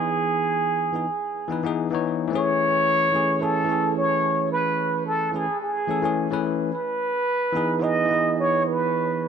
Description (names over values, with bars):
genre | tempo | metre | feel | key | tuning
chillout | 109 BPM | 4/4 | swing 53% on 16ths | A lydian | A4 = 438 Hz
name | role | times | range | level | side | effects
trumpet with plunger mute | melody | 0.0-9.3 s | G#4 to D#5 | -22 LUFS | right 1 dB | tape echo
bell-like tine electric piano | accompaniment | 0.0-9.3 s | E3 to C#5 | -25 LUFS | moving between left 8 dB and right 9 dB | auto-pan
room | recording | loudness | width
light reverb, small room ambience | none | -21 LUFS | side -7 dB against mid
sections
0.0-2.3 A section; 2.3-9.3 A section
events
none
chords
0.0 Emaj7; 2.3 Amaj7; 6.7 Emaj7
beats
| 0.12 0.67 1.22 1.77 | 2.32 2.87 3.42 3.97 | 4.52 5.07 5.62 6.17 | 6.72 7.27 7.82 8.37 | 8.92